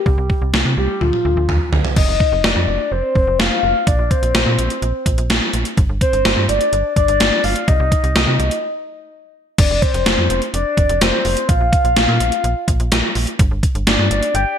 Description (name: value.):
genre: synth-pop.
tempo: 126 BPM.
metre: 4/4.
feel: straight.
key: unclear.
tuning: A4 = 441 Hz.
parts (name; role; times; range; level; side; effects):
soft octave-layered synth lead; melody; 0.0-14.6 s; F4 to G5; -19 LUFS; left 2 dB; chorus, phaser, ping-pong delay.
slap-like FM bass; bass; 0.1-14.5 s; F1 to C3; -19 LUFS; equal; none.
gated 80s digital drum machine; drums; 0.1-14.5 s; crash cymbal, hi-hat, kick drum, snare drum, toms; -17 LUFS; equal; gated reverb, gated reverb snare.
room: light reverb.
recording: bright 1980s-style digital production.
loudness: -14 LUFS.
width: side -8 dB against mid.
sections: 0.0-2.0 A section; 2.0-9.6 B section; 9.6-14.6 C section.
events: drum fill 1.0-2.0; break 8.6-9.6.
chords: 0.1 C5; 1.0 Dm; 2.0 F5; 3.9 Bbsus2; 5.8 G5; 7.7 Cm; 9.6 F5; 11.5 Bb5; 13.4 Ebmaj7/G (rootless).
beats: | 0.06 0.54 1.01 1.49 | 1.97 2.44 2.92 3.39 | 3.87 4.35 4.82 5.30 | 5.77 6.25 6.73 7.20 | 7.68 8.15 8.63 9.11 | 9.58 10.06 10.54 11.01 | 11.49 11.96 12.44 12.92 | 13.39 13.87 14.35.